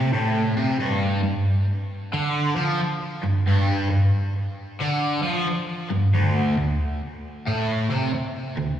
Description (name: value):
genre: rock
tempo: 90 BPM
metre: 4/4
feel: swing 65% on 8ths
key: unclear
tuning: A4 = 440 Hz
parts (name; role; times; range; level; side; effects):
- cranked stack guitar; solo; 0.0-8.8 s; D2 to F3; -21 LUFS; equal; overdrive, phaser, slapback echo, digital delay
room: wet lush hall reverb, RT60 2.4 s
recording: live gig heard through the venue's PA, recital hall reverb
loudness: -21 LUFS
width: side -10 dB against mid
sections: 0.0-8.8 A section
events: none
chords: none